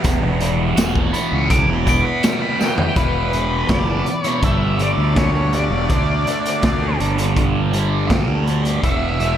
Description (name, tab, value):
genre	psychedelic rock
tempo	82 BPM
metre	4/4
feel	straight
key	E dorian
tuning	A4 = 441 Hz
part	thick fuzz guitar	riff	0.0-9.4 s	E2 to F#4	-21 LUFS	right 2 dB	distortion, phaser
part	fuzz fingered electric bass	bass	0.0-9.4 s	E1 to D2	-21 LUFS	equal	overdrive
part	raw garage drum kit	drums	0.0-9.4 s	hi-hat, kick drum, snare drum, toms	-21 LUFS	equal	none
part	tambourine	percussion	0.0-2.8 s	none	-37 LUFS	left 8 dB	none
part	octave-fuzz lead guitar	melody	1.5-9.4 s	B4 to D6	-24 LUFS	left 2 dB	distortion, analog delay
room	moderate cathedral reverb, RT60 6.4 s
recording	dreamy mix soaked in reverb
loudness	-16 LUFS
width	side -10 dB against mid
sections	0.0-3.0 A section; 3.0-9.4 B section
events	drum fill 2.6-3.0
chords	0.0 Emadd9; 3.0 E5; 4.4 G5; 5.9 D5; 7.0 G5; 8.8 E5